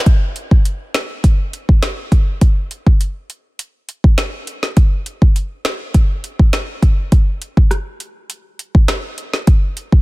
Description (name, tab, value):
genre	dancehall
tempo	102 BPM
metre	4/4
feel	straight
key	none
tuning	none
part	afro-pop drum kit	drums	0.1-10.0 s	finger snaps, hi-hat, kick drum, rim click, snare drum	-12 LUFS	equal	none
room	little or no reverb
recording	dense, heavily limited modern master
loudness	-13 LUFS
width	side -22 dB against mid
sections	0.1-10.0 A section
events	none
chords	none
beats	| 0.06 0.65 1.24 1.83 | 2.42 3.00 3.59 4.18 | 4.77 5.36 5.95 6.53 | 7.12 7.71 8.30 8.89 | 9.47